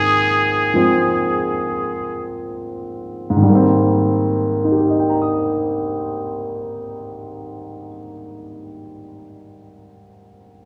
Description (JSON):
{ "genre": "jazz ballad", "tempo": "49-57 BPM", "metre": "4/4", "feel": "swing 66% on 8ths", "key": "Ab major", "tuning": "A4 = 440 Hz", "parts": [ { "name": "trumpet with straight mute", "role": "melody", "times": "0.0-2.3 s", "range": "Ab4", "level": "-20 LUFS", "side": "equal", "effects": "none" }, { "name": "warm grand piano", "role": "accompaniment", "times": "0.0-10.7 s", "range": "Ab2 to Eb6", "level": "-20 LUFS", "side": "equal", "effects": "none" } ], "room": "wet recital hall reverb, RT60 1.3 s", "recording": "recorded in a church or concert hall", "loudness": "-18 LUFS", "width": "mono", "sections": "0.0-3.4 A section; 3.4-8.3 B section", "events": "slowing down 0.0-3.4", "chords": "0.0 Abadd9; 3.4 Abmaj9", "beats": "0.02 1.10 2.23 | 3.42 4.64 5.86 7.08" }